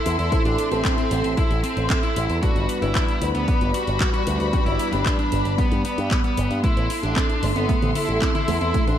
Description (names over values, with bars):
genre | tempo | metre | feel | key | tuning
italo disco | 114 BPM | 4/4 | straight | A minor | A4 = 440 Hz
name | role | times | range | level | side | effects
dark smooth lead guitar | melody | 0.0-9.0 s | B3 to F#4 | -26 LUFS | equal | overdrive, tape echo
dark studio string section | sustained chords | 0.0-9.0 s | G3 to C6 | -26 LUFS | left 1 dB | none
warm grand piano | stabs | 0.0-6.6 s | G2 to B4 | -31 LUFS | left 1 dB | analog chorus, tape echo
picked electric bass with an envelope filter | bass | 0.1-9.0 s | G1 to G2 | -25 LUFS | equal | none
house drum kit | drums | 0.1-9.0 s | handclaps, hi-hat, toms | -30 LUFS | left 1 dB | none
electronic kick drum | drums | 0.3-8.8 s | none | -23 LUFS | equal | none
warbly dusty pluck | arpeggios | 6.6-9.0 s | A3 to C5 | -30 LUFS | right 6 dB | chorus, phaser, cassette tape, tape echo
room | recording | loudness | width
moderate plate reverb, RT60 1.4 s | dreamy mix soaked in reverb | -19 LUFS | side -10 dB against mid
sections
0.0-9.0 A section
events
none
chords
0.0 Am; 2.4 G; 6.6 Am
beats
| 0.32 0.85 1.37 1.90 | 2.43 2.95 3.48 4.01 | 4.53 5.06 5.58 6.11 | 6.64 7.16 7.69 8.22 | 8.74